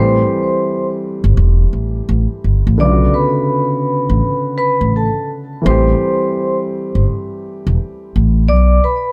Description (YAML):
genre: hip hop, boom-bap hip-hop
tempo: 84 BPM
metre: 4/4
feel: swing 62% on 16ths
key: unclear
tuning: A4 = 441 Hz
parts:
  - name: vibraphone with medium mallets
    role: melody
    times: 0.0-9.1 s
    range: A4 to D6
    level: -20 LUFS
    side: equal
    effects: digital delay
  - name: dark baby grand piano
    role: accompaniment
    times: 0.0-8.5 s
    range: C#3 to G4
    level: -22 LUFS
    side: equal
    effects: none
  - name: upright bass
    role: bass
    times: 0.0-8.8 s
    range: E1 to B1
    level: -15 LUFS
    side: equal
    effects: none
room: light reverb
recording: none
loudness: -15 LUFS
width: mono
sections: 0.0-9.1 A section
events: none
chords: 0.0 Am7; 2.8 Bm9; 5.7 Am7; 8.5 Bm